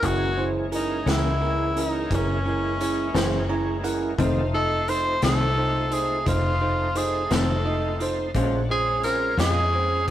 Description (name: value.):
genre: slow blues.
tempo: 58 BPM (dotted quarters).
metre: 12/8.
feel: straight.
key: unclear.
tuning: A4 = 439 Hz.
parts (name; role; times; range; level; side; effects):
clear tenor saxophone; melody; 0.0-10.0 s; Db4 to C5; -25 LUFS; equal; none.
bell-like tine electric piano; accompaniment; 0.0-10.1 s; Db4 to Bb5; -28 LUFS; right 3 dB; none.
bright tonewheel organ; sustained chords; 0.0-10.1 s; Fb3 to Gb4; -34 LUFS; equal; overdrive, chorus vibrato, slow rotary speaker.
fingered electric bass; bass; 0.0-10.1 s; F1 to F2; -27 LUFS; left 1 dB; none.
raw garage drum kit; drums; 0.0-10.1 s; hi-hat, kick drum, snare drum; -32 LUFS; equal; none.
clean electric guitar; accompaniment; 1.1-9.6 s; F2 to F4; -28 LUFS; left 4 dB; tremolo.
room: moderate stone room reverb, RT60 0.9 s.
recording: rough rehearsal-room recording, warm saturation.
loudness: -21 LUFS.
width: side -12 dB against mid.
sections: 0.0-10.1 A section.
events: tine electric piano fill 3.1-4.2.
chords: 0.0 Gb7; 4.2 F7; 8.3 Bbm7.